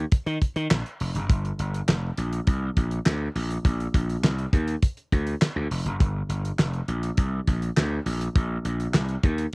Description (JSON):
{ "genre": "early-eighties boogie funk", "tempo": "102 BPM", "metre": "4/4", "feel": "straight", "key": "unclear", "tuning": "A4 = 440 Hz", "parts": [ { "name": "gritty slap bass", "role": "bass", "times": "0.0-9.5 s", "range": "F1 to Eb3", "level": "-26 LUFS", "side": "equal", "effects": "overdrive" }, { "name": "damped 70s drum kit", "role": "drums", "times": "0.1-9.5 s", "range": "handclaps, hi-hat, kick drum, snare drum", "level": "-22 LUFS", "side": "equal", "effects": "none" } ], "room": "little or no reverb", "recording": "home recording on cassette", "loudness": "-23 LUFS", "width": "side -32 dB against mid", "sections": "0.0-9.5 A section", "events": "none", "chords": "none" }